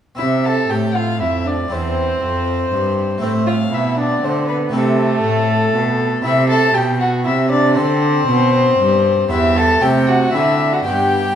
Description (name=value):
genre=classical, baroque-style sonata movement with continuo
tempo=118 BPM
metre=3/4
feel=rubato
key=G major from 6.2 s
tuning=A4 = 440 Hz
part: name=warm violin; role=melody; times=0.2-11.4 s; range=A4 to A5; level=-19 LUFS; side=left 4 dB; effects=none
part: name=warm violin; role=second line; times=0.2-11.4 s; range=A3 to A4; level=-21 LUFS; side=right 3 dB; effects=none
part: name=harpsichord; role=accompaniment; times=0.2-11.4 s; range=E2 to G4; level=-23 LUFS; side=equal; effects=none
part: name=rich cello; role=bass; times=0.2-11.4 s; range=E2 to D3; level=-18 LUFS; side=right 1 dB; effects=none
room=wet recital hall reverb, RT60 1.6 s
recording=none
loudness=-14 LUFS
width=side -9 dB against mid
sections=0.2-11.4 A section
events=none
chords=0.2 C; 1.7 C/E; 3.2 Am; 6.2 C; 7.8 Gadd11; 9.3 Em; 9.8 Am7/C; 10.3 D9